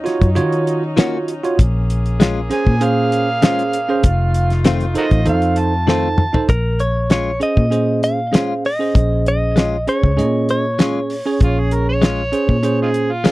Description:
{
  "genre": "straight-eighth soul blues",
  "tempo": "98 BPM",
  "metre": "4/4",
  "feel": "straight",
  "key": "Bb minor",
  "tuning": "A4 = 440 Hz",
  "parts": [
    { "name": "bell-like tine electric piano", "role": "accompaniment", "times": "0.0-13.3 s", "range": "Db4 to Eb5", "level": "-20 LUFS", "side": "right 3 dB", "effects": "none" },
    { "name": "warm horn section", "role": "sustained chords", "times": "0.0-6.5 s", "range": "Gb3 to Ab4", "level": "-28 LUFS", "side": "left 1 dB", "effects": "none" },
    { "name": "vintage muted fingered electric bass", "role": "bass", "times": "0.0-13.3 s", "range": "F1 to Eb3", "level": "-19 LUFS", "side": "equal", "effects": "none" },
    { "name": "cloth-damped thuddy drum kit", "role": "drums", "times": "0.1-13.3 s", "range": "hi-hat, kick drum, snare drum, toms", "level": "-15 LUFS", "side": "equal", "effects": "none" },
    { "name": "direct-recorded clean electric guitar", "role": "stabs", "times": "1.0-13.3 s", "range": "Eb3 to Gb4", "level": "-20 LUFS", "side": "left 5 dB", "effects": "none" },
    { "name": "overdriven harmonica", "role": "second line", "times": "2.5-6.5, 11.4-13.3 s", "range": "Eb4 to A5", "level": "-21 LUFS", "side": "right 2 dB", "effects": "none" },
    { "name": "direct-recorded clean electric guitar", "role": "melody", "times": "6.5-12.3 s", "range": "Bb4 to F5", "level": "-21 LUFS", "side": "equal", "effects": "none" }
  ],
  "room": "little or no reverb",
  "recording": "dry, close 1970s-style studio recording",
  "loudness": "-14 LUFS",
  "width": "side -18 dB against mid",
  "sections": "0.0-6.5 A section; 6.5-13.3 B section",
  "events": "harmonica solo 0.0-6.5; drum fill 5.9-6.5",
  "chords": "0.0 Ebm7; 1.6 Bbm7; 4.0 F7; 6.5 Bbm7"
}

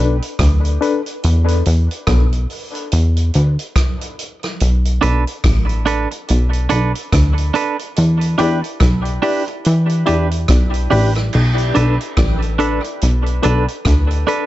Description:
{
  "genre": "dub reggae",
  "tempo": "71 BPM",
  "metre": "4/4",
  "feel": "swing 59% on 16ths",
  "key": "B minor",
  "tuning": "A4 = 439 Hz",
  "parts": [
    { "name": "barky reed electric piano", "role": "stabs", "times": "0.0-1.0, 8.4-14.5 s", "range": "D4 to D5", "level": "-23 LUFS", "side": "left 5 dB", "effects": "overdrive, fast tremolo, dub echo" },
    { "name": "plucky analog bass", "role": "bass", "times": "0.0-14.2 s", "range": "A1 to E3", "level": "-14 LUFS", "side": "equal", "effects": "none" },
    { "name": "vintage drum kit", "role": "drums", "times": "0.2-14.5 s", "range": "crash cymbal, hi-hat, kick drum, rim click", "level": "-20 LUFS", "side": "equal", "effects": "none" },
    { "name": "clean electric guitar", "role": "accompaniment", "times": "5.0-14.5 s", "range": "D4 to B4", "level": "-21 LUFS", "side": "right 6 dB", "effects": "dub echo" }
  ],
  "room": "small room ambience",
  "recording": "echo-heavy mix, nothing above 7.8 kHz",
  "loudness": "-14 LUFS",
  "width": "side -15 dB against mid",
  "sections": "0.0-11.3 A section; 11.3-14.5 B section",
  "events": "break 0.0-4.6",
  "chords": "0.0 Bm7; 1.2 E5; 4.6 Bm7; 8.0 Em7; 11.3 Bm7"
}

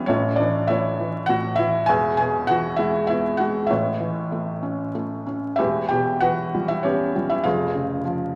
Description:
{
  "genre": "classical, lyrical solo piano",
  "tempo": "98 BPM",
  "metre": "3/4",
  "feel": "uneven beats, rubato",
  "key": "unclear",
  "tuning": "A4 = 444 Hz",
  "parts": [
    { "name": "felt-muted upright piano", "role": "solo", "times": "0.0-8.4 s", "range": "E1 to G#5", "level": "-22 LUFS", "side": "equal", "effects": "none" }
  ],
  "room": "wet recital hall reverb, RT60 1.6 s",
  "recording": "vinyl crackle",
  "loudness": "-23 LUFS",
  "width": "mono",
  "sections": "0.0-8.4 A section",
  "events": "none",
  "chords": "0.1 A; 1.9 E; 3.7 Aadd9; 5.6 Em; 7.5 C#7/E#"
}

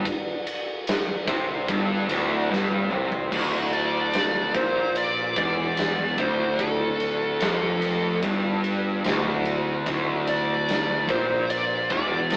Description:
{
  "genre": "stoner and doom metal",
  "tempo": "73 BPM",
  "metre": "4/4",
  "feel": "straight",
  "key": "D minor",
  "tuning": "A4 = 440 Hz",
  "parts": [
    { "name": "fuzz guitar", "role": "riff", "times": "0.0-12.4 s", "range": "D2 to C3", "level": "-28 LUFS", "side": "equal", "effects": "distortion" },
    { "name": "growling picked electric bass", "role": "bass", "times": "0.0-12.4 s", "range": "D1 to C2", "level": "-34 LUFS", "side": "equal", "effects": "overdrive" },
    { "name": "big rock drum kit", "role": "drums", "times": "0.1-12.4 s", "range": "crash cymbal, kick drum, ride cymbal, snare drum, toms", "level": "-31 LUFS", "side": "equal", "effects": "none" },
    { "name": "fuzz lead guitar", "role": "melody", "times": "3.7-12.4 s", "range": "A4 to D5", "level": "-28 LUFS", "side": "equal", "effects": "wah, distortion" }
  ],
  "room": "moderate stone room reverb, RT60 1.1 s",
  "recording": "rough rehearsal-room recording, AM radio sound",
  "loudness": "-25 LUFS",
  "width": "mono",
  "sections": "0.0-3.3 A section; 3.3-12.4 B section",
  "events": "drum fill 2.5-3.3",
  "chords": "0.0 N.C.; 3.3 Dm"
}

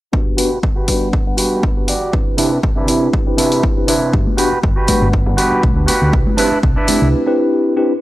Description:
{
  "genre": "filtered disco house",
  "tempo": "120 BPM",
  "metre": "4/4",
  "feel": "swing 55% on 16ths",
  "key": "G major",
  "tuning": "A4 = 440 Hz",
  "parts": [
    { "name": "bell-like tine electric piano", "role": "accompaniment", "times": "0.1-7.9 s", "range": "G3 to F#5", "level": "-18 LUFS", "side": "equal", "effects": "phaser, sidechain pumping, low-pass filter" },
    { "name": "electronic kick drum", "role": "drums", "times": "0.1-6.7 s", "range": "none", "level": "-17 LUFS", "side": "equal", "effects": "small room ambience" },
    { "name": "clean electric guitar", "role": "riff", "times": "0.4-7.1 s", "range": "C3 to D5", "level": "-18 LUFS", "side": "right 1 dB", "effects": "vintage 12-bit sampler grit, sidechain pumping, low-pass filter" },
    { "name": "electronic hi-hat", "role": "drums", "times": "0.4-7.0 s", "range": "none", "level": "-21 LUFS", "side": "left 1 dB", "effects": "sidechain pumping on hats, small room ambience" },
    { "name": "hollow-body short-scale fingered electric bass", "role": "bass", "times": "4.1-7.1 s", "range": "G1 to D2", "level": "-17 LUFS", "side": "equal", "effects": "tube saturation, sidechain pumping, low-pass filter" },
    { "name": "tambourine and congas", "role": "percussion", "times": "4.1-7.1 s", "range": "none", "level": "-24 LUFS", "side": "left 2 dB", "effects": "sidechain pumping on perc, low-pass filter on perc" }
  ],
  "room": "light reverb, digital ambience",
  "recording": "dry, gritty hardware recording, lossy compression artefacts",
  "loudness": "-13 LUFS",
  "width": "side -16 dB against mid",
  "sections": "0.1-8.0 A section",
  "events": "filter sweep 0.1-8.0",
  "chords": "0.1 Gmaj7; 2.1 Cmaj9; 4.1 Gmaj7; 6.1 Cmaj9"
}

